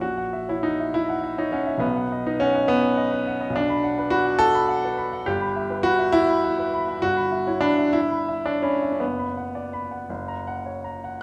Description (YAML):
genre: classical, romantic character piece for solo piano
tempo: 53-71 BPM (dotted quarters)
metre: 6/8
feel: rubato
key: B major, B minor from 3.6 s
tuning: A4 = 440 Hz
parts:
  - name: clear baby grand piano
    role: solo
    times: 0.0-11.2 s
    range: F#1 to B5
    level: -24 LUFS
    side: equal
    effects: none
room: wet recital hall reverb, RT60 1.4 s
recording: none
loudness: -23 LUFS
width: mono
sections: 0.0-11.2 A section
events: none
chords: 0.0 F#7/A#; 1.8 B; 3.6 Bm; 5.3 Em/G; 7.0 C#m7b5/G; 9.0 Bm/F#; 10.1 F#